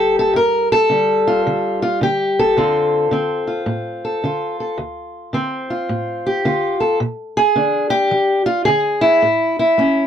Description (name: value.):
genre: acoustic country blues, solo or duo.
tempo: 108 BPM.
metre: 4/4.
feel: swing 65% on 8ths.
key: D minor.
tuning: A4 = 439 Hz.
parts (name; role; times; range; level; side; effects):
fingerpicked steel-string acoustic guitar; solo; 0.0-10.1 s; D2 to Bb4; -15 LUFS; equal; none.
room: light reverb.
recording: dry, close 1970s-style studio recording.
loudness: -15 LUFS.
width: side -9 dB against mid.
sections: 0.0-10.1 A section.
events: none.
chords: 0.0 Gm9; 2.6 Dm7; 7.0 Bb7; 9.2 A.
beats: | 0.34 0.90 1.45 2.01 | 2.56 3.12 3.67 4.23 | 4.79 5.34 5.90 6.45 | 7.01 7.57 8.12 8.68 | 9.23 9.79.